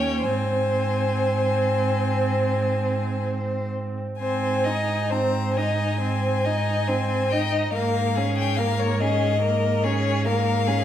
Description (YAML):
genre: classical, slow romantic movement for string quartet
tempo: 59-74 BPM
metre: 4/4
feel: rubato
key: Ab major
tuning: A4 = 440 Hz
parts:
  - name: clear violin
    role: melody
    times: 0.0-10.8 s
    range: Db5 to Bb5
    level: -28 LUFS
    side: left 9 dB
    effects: none
  - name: rich violin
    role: second line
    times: 0.0-10.8 s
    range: Ab4 to Eb5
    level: -27 LUFS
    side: left 2 dB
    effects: none
  - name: rich viola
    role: accompaniment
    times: 0.0-10.8 s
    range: Bb3 to Eb4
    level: -27 LUFS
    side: right 2 dB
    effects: none
  - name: warm cello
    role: bass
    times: 0.0-10.8 s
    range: Eb2 to Ab2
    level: -25 LUFS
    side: right 2 dB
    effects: none
room: wet recital hall reverb, RT60 1.3 s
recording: none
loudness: -21 LUFS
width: side -10 dB against mid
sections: 0.0-4.2 A section; 4.2-10.8 A section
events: none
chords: 0.2 Ab; 7.7 Bbm7/Ab